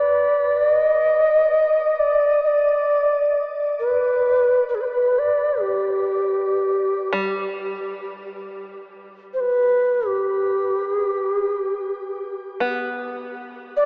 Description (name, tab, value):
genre	world meditative, free-time meditation music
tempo	free time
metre	none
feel	none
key	G major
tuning	A4 = 439 Hz
part	mellow Native American-style cedar flute	melody	0.0-13.9 s	G4 to Eb5	-18 LUFS	equal	shimmer reverb, diffuse ambient delay
part	open-back banjo	texture	0.0-13.9 s	G3 to B3	-28 LUFS	equal	shimmer reverb
room	wet huge ambient reverb, RT60 7.6 s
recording	in a vast, echoing space, cassette tape, small speaker sound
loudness	-18 LUFS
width	side -31 dB against mid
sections	0.0-12.6 A section; 12.6-13.9 A section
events	none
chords	none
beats	free time